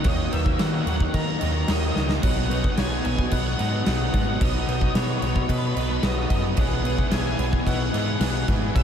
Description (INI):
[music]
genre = post-rock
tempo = 110 BPM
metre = 4/4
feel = straight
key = unclear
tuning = A4 = 442 Hz
[part]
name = octave-fuzz lead guitar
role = melody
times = 0.0-8.8 s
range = B4 to A#5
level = -31 LUFS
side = left 1 dB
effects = distortion, tape echo
[part]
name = felt-muted upright piano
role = arpeggios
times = 0.0-8.8 s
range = A#4 to D#5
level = -36 LUFS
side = right 7 dB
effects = tape echo
[part]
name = twangy electric guitar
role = arpeggios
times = 0.0-8.8 s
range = B2 to G#4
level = -36 LUFS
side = left 2 dB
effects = none
[part]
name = crunchy overdriven guitar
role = riff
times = 0.0-8.8 s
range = B2 to G#4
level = -32 LUFS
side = right 10 dB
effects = ensemble chorus
[part]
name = fuzz guitar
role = riff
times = 0.0-8.8 s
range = B2 to G#4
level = -30 LUFS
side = left 9 dB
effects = distortion
[part]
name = huge arena drum kit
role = drums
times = 0.0-8.8 s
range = crash cymbal, kick drum, snare drum, splash cymbal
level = -24 LUFS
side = equal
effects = none
[part]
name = growling picked electric bass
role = bass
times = 0.1-8.8 s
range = B1 to D#3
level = -26 LUFS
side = equal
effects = overdrive
[part]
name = rich chamber string section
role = sustained chords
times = 2.2-8.8 s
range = B4 to D#6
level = -39 LUFS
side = left 2 dB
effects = none
[sound]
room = light reverb, small room ambience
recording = none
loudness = -21 LUFS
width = side -8 dB against mid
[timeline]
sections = 0.0-8.8 A section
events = drum fill 2.0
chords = 0.0 D#m; 2.2 B; 6.6 E/B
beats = | 0.05 0.59 1.14 1.68 | 2.22 2.77 3.31 3.86 | 4.40 4.95 5.49 6.03 | 6.58 7.12 7.67 8.21 | 8.75